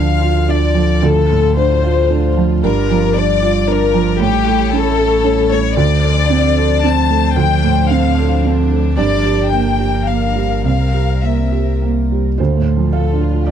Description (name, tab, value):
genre	neoclassical piano and strings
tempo	101-116 BPM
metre	3/4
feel	rubato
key	D minor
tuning	A4 = 440 Hz
part	warm chamber violin section	melody	0.0-13.5 s	F4 to A5	-18 LUFS	left 8 dB	none
part	felt-muted upright piano	accompaniment	0.0-13.5 s	C2 to F5	-16 LUFS	right 8 dB	none
part	warm chamber string section	sustained chords	0.0-13.5 s	F3 to D5	-25 LUFS	left 2 dB	none
part	sub bass with octave	bass	0.0-13.5 s	G1 to D2	-17 LUFS	left 2 dB	none
room	light reverb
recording	dry, close 1970s-style studio recording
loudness	-12 LUFS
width	side -9 dB against mid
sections	0.0-12.4 A section; 12.4-13.5 B section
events	none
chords	0.0 Dm7; 2.6 Gm7; 4.2 A7; 5.8 Dm7; 9.0 Gm7; 10.7 C7; 12.4 Dm7